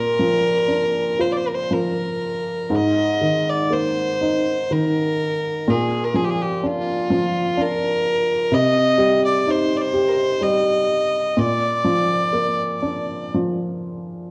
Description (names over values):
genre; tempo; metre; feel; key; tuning
celtic folk, Celtic slow air; 62 BPM; 3/4; uneven beats, rubato; unclear; A4 = 440 Hz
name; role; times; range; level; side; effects
clear fiddle; melody; 0.0-13.3 s; F4 to Eb5; -23 LUFS; equal; none
warm upright piano; accompaniment; 0.0-14.3 s; Ab2 to G4; -24 LUFS; equal; none
room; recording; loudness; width
moderate recital hall reverb, RT60 1.3 s; worn, warbling old tape, cassette tape, warbly pitch drift; -20 LUFS; mono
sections
0.0-14.3 A section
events
none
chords
0.0 Bb; 2.7 Absus2; 5.7 Bb; 8.5 Cm; 11.4 Bb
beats
0.68 1.70 | 2.71 3.72 4.71 | 5.68 6.64 7.57 | 8.51 9.46 10.42 | 11.37 12.33 13.33